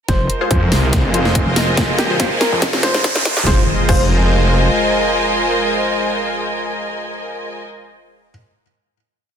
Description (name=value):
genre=heavy wobble dubstep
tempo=142 BPM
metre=4/4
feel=swing 54% on 16ths, half-time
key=F minor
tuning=A4 = 440 Hz
part: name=warm baby grand piano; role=melody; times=0.1-8.3 s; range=G4 to C5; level=-25 LUFS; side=equal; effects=digital delay
part: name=supersaw pad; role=sustained chords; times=0.1-7.6 s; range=Ab3 to C5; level=-22 LUFS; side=equal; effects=sidechain pumping
part: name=wobble bass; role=bass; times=0.1-4.7 s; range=F1 to Ab1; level=-18 LUFS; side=equal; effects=chorus, overdrive
part: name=dubstep drum kit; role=drums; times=0.1-4.0 s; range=crash cymbal, hi-hat, snare drum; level=-20 LUFS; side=equal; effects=none
part: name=electronic kick drum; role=drums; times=0.1-4.0 s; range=none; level=-19 LUFS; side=equal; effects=none
part: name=riser and impact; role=sound effects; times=1.1-8.3 s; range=none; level=-23 LUFS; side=right 1 dB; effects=none
part: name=clear studio string section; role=texture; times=0.1-7.6 s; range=Bb4 to Ab5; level=-21 LUFS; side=equal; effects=sidechain pumping
part: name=orchestra-hit-like synth stab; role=stabs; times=0.4-8.3 s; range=F4 to C5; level=-25 LUFS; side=left 2 dB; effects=built-in reverb, cassette tape, digital delay
part: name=snarling distorted saw bass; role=bass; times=0.5-3.5 s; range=F1 to F2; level=-17 LUFS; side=equal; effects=distortion, overdrive
room=moderate lush hall reverb, RT60 1.7 s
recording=dense, heavily limited modern master, high-pass filter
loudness=-13 LUFS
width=side -8 dB against mid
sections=0.1-3.5 build; 3.5-6.8 final chord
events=build-up 0.1-3.5; drum fill 0.1-3.5; filter sweep 0.1-3.5; riser 1.1-3.5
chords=0.1 Fm